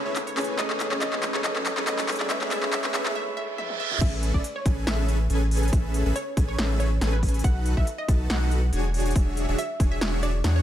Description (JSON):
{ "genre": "future bass", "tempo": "140 BPM", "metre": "4/4", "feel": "swing 54% on 16ths, half-time", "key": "A major", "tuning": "A4 = 440 Hz", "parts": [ { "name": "dark concert grand piano", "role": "accompaniment", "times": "0.0-4.0 s", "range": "G#3 to C#5", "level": "-32 LUFS", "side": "equal", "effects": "sidechain pumping, tape echo" }, { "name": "ethereal airy pad", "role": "sustained chords", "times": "0.0-3.1 s", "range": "G#3 to G#4", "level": "-42 LUFS", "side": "left 2 dB", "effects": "none" }, { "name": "dense compressed supersaw", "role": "riff", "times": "0.0-10.6 s", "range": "C#4 to A5", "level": "-31 LUFS", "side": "equal", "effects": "sidechain pumping" }, { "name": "saturated sub bass", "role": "bass", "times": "0.0-10.6 s", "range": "E1 to A2", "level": "-25 LUFS", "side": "equal", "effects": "sidechain pumping, high-pass filter" }, { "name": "riser and reverse cymbal", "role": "sound effects", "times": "1.0-4.0 s", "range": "none", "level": "-36 LUFS", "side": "right 6 dB", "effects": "none" }, { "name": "wide unison pluck", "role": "melody", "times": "0.1-10.6 s", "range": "B4 to F#5", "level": "-33 LUFS", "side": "right 1 dB", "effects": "sidechain pumping, tape echo" }, { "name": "big-room dance drum kit", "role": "drums", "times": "0.2-10.5 s", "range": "crash cymbal, handclaps, hi-hat, snare drum, toms", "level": "-29 LUFS", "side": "equal", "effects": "none" }, { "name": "electronic kick drum", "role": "drums", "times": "4.0-9.9 s", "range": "none", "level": "-22 LUFS", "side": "equal", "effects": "none" } ], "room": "light reverb", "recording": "high-pass filter", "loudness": "-22 LUFS", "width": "side -11 dB against mid", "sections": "0.0-4.0 A section; 4.0-10.6 B section", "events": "build-up 0.0-4.0; drum fill 0.0-3.2, 3.6-4.0; riser 1.0-3.2; break 3.2-4.0; reverse cymbal 3.2-4.0; drop 4.0-10.6", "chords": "0.0 Amaj9; 0.6 B7; 2.1 E6; 4.0 Amaj9; 7.4 B7; 8.9 E13" }